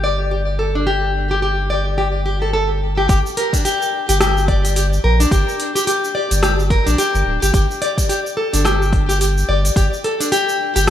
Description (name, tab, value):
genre	organic downtempo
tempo	108 BPM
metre	4/4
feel	swing 58% on 16ths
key	G minor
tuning	A4 = 440 Hz
part	nylon-string guitar	arpeggios	0.0-10.9 s	D4 to D5	-18 LUFS	left 1 dB	digital delay
part	warm sub bass	bass	0.0-10.9 s	D1 to Bb1	-18 LUFS	equal	none
part	deep house drum kit	drums	0.2-10.9 s	cabasa, hi-hat, rim click	-22 LUFS	equal	overdrive, low-pass filter on perc, low-pass filter on hats, low-pass filter on snare, low-pass filter on room
part	electronic kick drum	drums	3.1-9.9 s	none	-17 LUFS	equal	overdrive
room	moderate plate reverb, RT60 2.3 s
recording	bright 1980s-style digital production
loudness	-15 LUFS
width	side -10 dB against mid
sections	0.0-3.1 A section; 3.1-10.9 B section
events	none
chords	0.0 Gsus2; 3.1 Gm; 7.5 G5